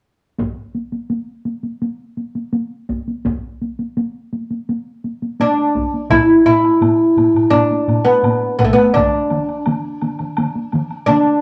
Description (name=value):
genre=japanese traditional, taiko drum ensemble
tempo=84 BPM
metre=4/4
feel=straight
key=unclear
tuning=A4 = 440 Hz
part: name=solo taiko drums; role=percussion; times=0.4-11.4 s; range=none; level=-25 LUFS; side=equal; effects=none
part: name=taiko ensemble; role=percussion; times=0.4-9.1 s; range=none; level=-28 LUFS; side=equal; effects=none
part: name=oud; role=melody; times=5.4-11.4 s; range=A3 to E4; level=-15 LUFS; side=equal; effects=none
part: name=solo taiko drums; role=percussion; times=6.1-8.8 s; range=none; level=-23 LUFS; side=equal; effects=none
part: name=woodblock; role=percussion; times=6.1-11.3 s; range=none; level=-32 LUFS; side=equal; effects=none
part: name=taiko ensemble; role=percussion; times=8.9-11.3 s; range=none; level=-26 LUFS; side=equal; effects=none
room=moderate studio reverb, RT60 0.7 s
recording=none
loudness=-17 LUFS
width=mono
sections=0.4-6.1 A section; 6.1-11.4 B section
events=none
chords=none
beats=| 0.40 1.11 1.82 2.54 | 3.25 3.96 4.68 5.39 | 6.11 6.82 7.53 8.24 | 8.96 9.67 10.38 11.09